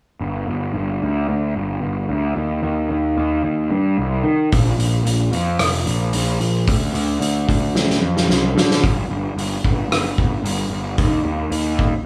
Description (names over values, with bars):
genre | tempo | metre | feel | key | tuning
quiet-loud alternative rock | 112 BPM | 4/4 | straight | unclear | A4 = 435 Hz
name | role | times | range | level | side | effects
fuzz picked electric bass | bass | 0.2-11.9 s | F1 to Eb3 | -21 LUFS | equal | overdrive
loose indie drum kit | drums | 4.5-11.9 s | hi-hat, kick drum, rim click, snare drum | -23 LUFS | equal | none
room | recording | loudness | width
light reverb | band playing live in one room, studio ambience | -20 LUFS | mono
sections
0.2-8.8 A section; 8.8-12.1 B section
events
drum fill 7.7-8.8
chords
none